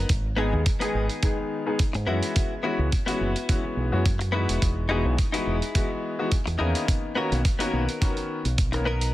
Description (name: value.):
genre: nu-disco, nu disco.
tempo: 106 BPM.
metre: 4/4.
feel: swing 54% on 16ths.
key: unclear.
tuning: A4 = 440 Hz.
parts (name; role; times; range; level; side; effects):
direct-recorded clean electric guitar; riff; 0.0-9.1 s; B3 to A#4; -30 LUFS; left 2 dB; analog chorus, dub echo.
fingered electric bass with an envelope filter; bass; 0.0-9.1 s; E1 to G#2; -26 LUFS; equal; sidechain pumping.
electronic hi-hat; drums; 0.1-9.1 s; none; -33 LUFS; right 4 dB; none.
electronic kick drum; drums; 0.1-8.7 s; none; -24 LUFS; equal; none.
clear grand piano; accompaniment; 0.4-8.9 s; D#3 to D#5; -28 LUFS; left 2 dB; sidechain pumping, low-pass filter, dub echo.
room: little or no reverb.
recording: none.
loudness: -22 LUFS.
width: side -15 dB against mid.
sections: 0.0-9.1 A section.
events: none.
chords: 0.1 G#m; 2.1 F#7sus4; 4.6 Emaj7; 6.9 Bmaj7.